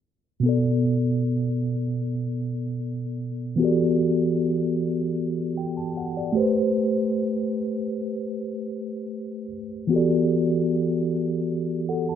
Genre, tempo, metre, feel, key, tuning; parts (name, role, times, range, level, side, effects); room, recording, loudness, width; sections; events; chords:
R&B; 76 BPM; 4/4; straight; E minor; A4 = 440 Hz
mellow tine electric piano; accompaniment; 0.4-12.2 s; B2 to A5; -22 LUFS; equal; medium stereo tremolo
light reverb; low-pass filter; -22 LUFS; side -9 dB against mid
0.4-12.2 A section
filter sweep 0.4-12.2; tine electric piano fill 5.2-6.8, 11.9
0.4 Bm7; 3.6 Em11; 6.4 Am9; 9.9 Em11